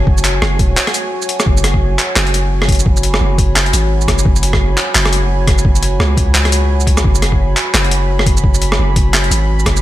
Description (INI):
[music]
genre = half-time drum and bass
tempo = 172 BPM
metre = 4/4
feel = swing 59% on 16ths, half-time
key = F# minor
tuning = A4 = 440 Hz
[part]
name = dark analog pad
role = sustained chords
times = 0.0-9.8 s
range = F#4 to B5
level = -21 LUFS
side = right 1 dB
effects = chorus, sidechain pumping
[part]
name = long sustained 808-style bass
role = bass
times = 0.0-9.8 s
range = F#1 to C#2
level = -15 LUFS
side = equal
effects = none
[part]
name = electronic kick drum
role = drums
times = 0.1-9.7 s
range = none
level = -14 LUFS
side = equal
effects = overdrive
[part]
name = boom bap sampler-style drum kit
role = drums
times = 0.2-9.8 s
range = handclaps, hi-hat, rim click, shaker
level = -16 LUFS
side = equal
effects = overdrive
[sound]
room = digital ambience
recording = none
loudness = -11 LUFS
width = side -14 dB against mid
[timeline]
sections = 0.0-9.8 A section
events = break 0.8-1.5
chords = 0.0 F#madd9